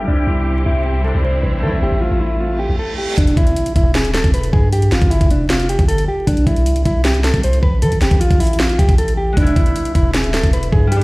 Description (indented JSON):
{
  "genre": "hip hop, trap",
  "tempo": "155 BPM",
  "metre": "4/4",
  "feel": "half-time",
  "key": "unclear",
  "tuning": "A4 = 444 Hz",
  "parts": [
    { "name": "mellow electric guitar", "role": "melody", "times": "0.0-11.0 s", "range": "D4 to C5", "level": "-20 LUFS", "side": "equal", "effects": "low-pass filter, tape echo" },
    { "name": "concert harp", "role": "accompaniment", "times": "0.0-4.9, 9.3-11.0 s", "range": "G3 to E4", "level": "-27 LUFS", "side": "left 1 dB", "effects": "low-pass filter" },
    { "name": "clear symphonic string section", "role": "sustained chords", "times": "0.0-3.2 s", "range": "C3 to G4", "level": "-26 LUFS", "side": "equal", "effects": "low-pass filter" },
    { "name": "long sustained 808-style bass", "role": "bass", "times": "0.1-11.0 s", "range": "D1 to E3", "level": "-17 LUFS", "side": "equal", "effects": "none" },
    { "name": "reverse cymbal and impact", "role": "sound effects", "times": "2.6-4.7 s", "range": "none", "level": "-26 LUFS", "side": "equal", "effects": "none" },
    { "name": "trap drum kit", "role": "drums", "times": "3.2-11.0 s", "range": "hi-hat, kick drum, snare drum", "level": "-16 LUFS", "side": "equal", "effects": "none" }
  ],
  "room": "light reverb, digital ambience",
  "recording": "played on a big sound system in a bare room, stone room reverb, vinyl crackle",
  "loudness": "-13 LUFS",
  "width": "side -22 dB against mid",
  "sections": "0.0-3.2 A section; 3.2-11.0 B section",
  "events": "filter sweep 0.0-3.2; reverse cymbal 2.6-3.2; break 2.8-3.2; impact 3.2-4.7",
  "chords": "0.1 C; 1.6 Am; 3.2 E; 4.7 Fadd9; 6.3 C; 7.8 A5; 9.4 E"
}